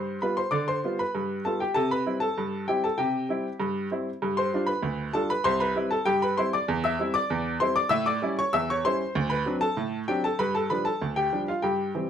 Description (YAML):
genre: ragtime piano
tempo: 97 BPM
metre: 2/4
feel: straight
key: C major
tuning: A4 = 439 Hz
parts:
  - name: bright baby grand piano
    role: solo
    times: 0.0-12.1 s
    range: C2 to E6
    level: -24 LUFS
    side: equal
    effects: none
room: moderate studio reverb, RT60 0.5 s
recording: none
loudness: -24 LUFS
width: side -8 dB against mid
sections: 0.0-12.1 A section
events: none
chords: 0.0 G7; 1.8 C; 4.2 G7; 5.5 C; 6.7 C/E; 7.9 A7; 9.1 D7; 10.4 G7